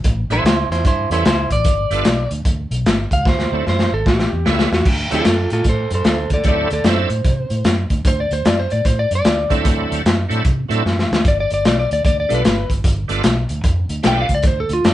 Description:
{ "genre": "electric blues shuffle", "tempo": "150 BPM", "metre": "4/4", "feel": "swing 64% on 8ths", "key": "D mixolydian", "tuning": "A4 = 442 Hz", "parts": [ { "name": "fingered electric bass", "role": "bass", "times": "0.0-14.9 s", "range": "G1 to C3", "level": "-21 LUFS", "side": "equal", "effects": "none" }, { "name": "crunchy breakbeat drum kit", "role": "drums", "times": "0.0-14.9 s", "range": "crash cymbal, hi-hat, kick drum, snare drum", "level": "-17 LUFS", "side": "equal", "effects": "none" }, { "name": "electric slide guitar", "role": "melody", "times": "0.3-14.9 s", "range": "D4 to G5", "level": "-20 LUFS", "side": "equal", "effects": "none" }, { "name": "bright tonewheel organ", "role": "accompaniment", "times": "0.3-7.1, 9.5-14.3 s", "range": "F#3 to F4", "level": "-22 LUFS", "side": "right 4 dB", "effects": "overdrive, chorus vibrato, slow rotary speaker" } ], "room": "moderate studio reverb, RT60 0.5 s", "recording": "band playing live in one room, nothing above 10.3 kHz", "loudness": "-15 LUFS", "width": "side -14 dB against mid", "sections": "0.0-4.9 A section; 4.9-14.9 B section", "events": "drum fill 3.3-4.9, 10.9-11.2; electric slide guitar solo 4.9-14.9", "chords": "0.0 A7; 1.7 G7; 3.3 D7; 4.1 A7; 4.9 D7; 11.2 G7" }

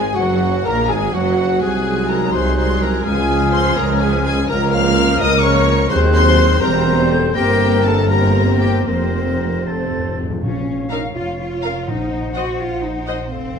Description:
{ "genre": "classical", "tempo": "83 BPM (dotted quarters)", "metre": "6/8", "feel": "rubato", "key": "Db major, Bb minor from 4.5 s", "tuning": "A4 = 440 Hz", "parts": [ { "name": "warm symphonic violin section", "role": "melody", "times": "0.0-13.6 s", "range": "C5 to F6", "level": "-24 LUFS", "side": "left 4 dB", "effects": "none" }, { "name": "clear cor anglais", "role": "second line", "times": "0.0-10.2 s", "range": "Gb4 to C5", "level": "-29 LUFS", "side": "right 2 dB", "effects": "none" }, { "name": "silver concert flute", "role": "second line", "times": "0.0-13.6 s", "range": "F5 to Bb6", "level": "-26 LUFS", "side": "left 4 dB", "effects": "none" }, { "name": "warm clarinet", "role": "second line", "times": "0.0-13.6 s", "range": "C4 to F5", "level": "-27 LUFS", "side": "left 3 dB", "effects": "none" }, { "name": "warm symphonic violin section", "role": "second line", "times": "0.0-13.2 s", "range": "C4 to Bb5", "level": "-28 LUFS", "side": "left 3 dB", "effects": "none" }, { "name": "warm symphonic viola section", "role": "accompaniment", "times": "0.0-13.2 s", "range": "F3 to F5", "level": "-24 LUFS", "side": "right 2 dB", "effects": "none" }, { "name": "mellow French horn section", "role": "sustained chords", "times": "0.0-13.2 s", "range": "F3 to C5", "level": "-24 LUFS", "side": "left 5 dB", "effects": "none" }, { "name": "mellow trombone section", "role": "sustained chords", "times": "0.0-10.2 s", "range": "E3 to Eb4", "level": "-27 LUFS", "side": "right 5 dB", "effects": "none" }, { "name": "dark trumpet section", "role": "stabs", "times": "0.0-10.2 s", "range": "Gb4 to C5", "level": "-26 LUFS", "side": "left 1 dB", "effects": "none" }, { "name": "rich symphonic double bass section", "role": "bass", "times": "0.0-13.6 s", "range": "E1 to Eb2", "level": "-22 LUFS", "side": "right 2 dB", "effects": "none" }, { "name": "warm symphonic cello section", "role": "bass", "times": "0.0-13.6 s", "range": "C2 to Gb4", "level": "-22 LUFS", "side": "equal", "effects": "none" }, { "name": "warm tuba", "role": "bass", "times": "0.0-10.2 s", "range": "E1 to Eb2", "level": "-24 LUFS", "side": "right 4 dB", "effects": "none" }, { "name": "timpani", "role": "percussion", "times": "9.7-12.6 s", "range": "F2 to Bb2", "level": "-27 LUFS", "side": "left 2 dB", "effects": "none" } ], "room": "moderate scoring stage reverb, RT60 1.9 s", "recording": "none", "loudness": "-14 LUFS", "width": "side -6 dB against mid", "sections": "0.0-10.4 A section; 10.4-13.6 B section", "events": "timpani fill 9.7-10.4", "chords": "0.2 Gb; 1.6 Ab7/C; 3.1 Db; 4.5 Bbm/Db; 5.9 Cdim/Eb; 6.6 C7/E; 7.4 C7/G; 8.9 Fsus4; 9.7 F; 10.4 Bbm; 11.9 Cdim/Bb" }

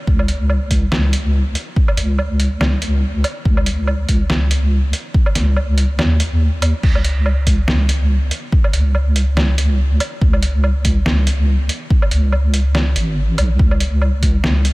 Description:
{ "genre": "deep dubstep", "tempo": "142 BPM", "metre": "4/4", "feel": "swing 57% on 16ths, half-time", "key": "unclear", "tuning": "A4 = 440 Hz", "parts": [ { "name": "deep soft wobble bass", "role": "bass", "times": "0.1-14.7 s", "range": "G#1 to D#2", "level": "-15 LUFS", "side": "equal", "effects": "chorus" }, { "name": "electronic kick drum", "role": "drums", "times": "0.1-14.3 s", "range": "none", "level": "-15 LUFS", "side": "equal", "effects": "small room ambience" }, { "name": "trip hop sampler-style drum kit", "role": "drums", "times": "0.2-14.7 s", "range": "crash cymbal, hi-hat, snare drum, woodblock", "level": "-22 LUFS", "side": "right 1 dB", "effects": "overdrive, small room ambience" } ], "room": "little or no reverb", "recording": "none", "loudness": "-14 LUFS", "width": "side -22 dB against mid", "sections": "0.0-14.7 A section", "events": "none", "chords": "none" }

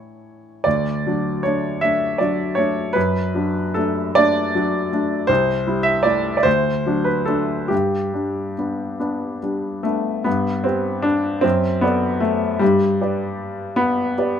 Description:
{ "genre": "classical, romantic character piece for solo piano", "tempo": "46-54 BPM (dotted quarters)", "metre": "6/8", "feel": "rubato", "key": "D major, G major from 5.3 s", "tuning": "A4 = 440 Hz", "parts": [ { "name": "clear grand piano", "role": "solo", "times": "0.0-14.4 s", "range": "C2 to E5", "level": "-18 LUFS", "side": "equal", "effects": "none" } ], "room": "light reverb", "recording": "none", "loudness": "-18 LUFS", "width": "side -8 dB against mid", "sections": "0.0-10.3 A section; 10.3-14.4 B section", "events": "none", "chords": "0.0 A; 0.7 D; 3.0 D/F#; 5.3 Am7/C; 6.5 D7; 7.7 G; 11.4 D/F#; 12.6 G" }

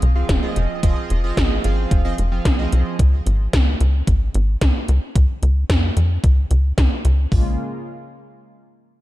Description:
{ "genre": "synthwave", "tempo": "111 BPM", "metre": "4/4", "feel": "straight", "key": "Bb minor", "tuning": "A4 = 436 Hz", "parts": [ { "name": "tight sequencer bass", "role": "bass", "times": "0.0-7.6 s", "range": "F1 to F2", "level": "-17 LUFS", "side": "equal", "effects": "none" }, { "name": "80s electronic pad drums", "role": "drums", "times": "0.0-7.2 s", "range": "hi-hat, snare drum", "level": "-26 LUFS", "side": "equal", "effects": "none" }, { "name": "impact", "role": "sound effects", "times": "0.0-0.8 s", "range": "none", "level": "barely audible", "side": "none", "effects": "none" }, { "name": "chorused polysynth", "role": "stabs", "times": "0.2-3.0 s", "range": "F3 to F5", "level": "-26 LUFS", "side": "right 4 dB", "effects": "digital delay" }, { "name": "gated 80s digital drum machine", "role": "drums", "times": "0.3-7.4 s", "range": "hi-hat, kick drum", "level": "-19 LUFS", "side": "equal", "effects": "overdrive" }, { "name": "chorused pulse-width pad", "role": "sustained chords", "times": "7.3-7.6 s", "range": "Db3 to F4", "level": "-29 LUFS", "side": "left 2 dB", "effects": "sidechain pumping" } ], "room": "digital ambience", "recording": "dark, warm production", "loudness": "-16 LUFS", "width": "side -16 dB against mid", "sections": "0.0-7.3 A section; 7.3-9.0 B section", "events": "impact 0.0-0.8", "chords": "0.0 Fm7; 3.0 Db5; 7.3 Bbm7" }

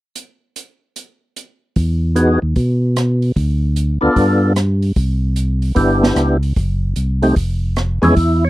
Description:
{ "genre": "soul jazz organ trio", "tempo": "150 BPM", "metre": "4/4", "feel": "swing 66% on 8ths", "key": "unclear", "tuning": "A4 = 440 Hz", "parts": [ { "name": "open jazz drum kit", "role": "drums", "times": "0.2-8.3 s", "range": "hi-hat, kick drum, rim click, snare drum", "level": "-19 LUFS", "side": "equal", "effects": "none" }, { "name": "tonewheel organ", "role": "bass", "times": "1.8-8.5 s", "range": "F1 to B2", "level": "-16 LUFS", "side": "equal", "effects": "overdrive, chorus vibrato, stopped rotary speaker" }, { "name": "percussive tonewheel organ", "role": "melody", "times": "2.2-8.5 s", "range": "E2 to C#5", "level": "-13 LUFS", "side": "equal", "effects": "slow rotary speaker, overdrive, chorus vibrato" } ], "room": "little or no reverb", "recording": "dry, close 1970s-style studio recording", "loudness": "-14 LUFS", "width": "side -17 dB against mid", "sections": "0.2-1.8 A section; 1.8-8.2 B section", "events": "none", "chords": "0.2 N.C.; 1.8 Emaj7; 3.4 Dm; 4.2 G7; 5.0 Cmaj9; 6.6 F#m; 7.4 Fmmaj7" }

